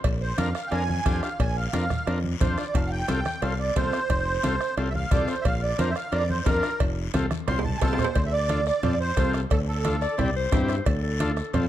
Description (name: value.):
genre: latin, cumbia.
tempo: 178 BPM.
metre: 4/4.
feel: straight.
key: F major.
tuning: A4 = 440 Hz.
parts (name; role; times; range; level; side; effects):
fingered electric bass; bass; 0.0-11.7 s; F1 to G2; -27 LUFS; equal; none.
bombo; percussion; 0.0-11.7 s; none; -28 LUFS; left 1 dB; none.
congas; percussion; 0.0-11.7 s; none; -32 LUFS; right 1 dB; none.
cowbell and timbales; percussion; 0.0-11.7 s; none; -35 LUFS; right 6 dB; none.
guiro; percussion; 0.0-11.7 s; none; -43 LUFS; left 8 dB; none.
musette accordion; melody; 0.2-10.2 s; A4 to C6; -28 LUFS; right 3 dB; none.
combo organ; accompaniment; 0.4-11.7 s; C4 to C5; -31 LUFS; left 2 dB; none.
breathy clarinet; second line; 10.0-11.7 s; A4 to D5; -30 LUFS; left 4 dB; none.
room: light reverb.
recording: dark, warm production.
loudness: -22 LUFS.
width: side -12 dB against mid.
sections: 0.0-8.2 A section; 8.2-11.7 B section.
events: accordion solo 0.0-8.2; drum fill 7.1-8.2.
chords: 0.0 Bb; 2.8 F; 5.5 Bb; 6.8 F; 8.2 Dm; 8.8 F; 9.5 Dm; 10.2 C; 10.9 Dm.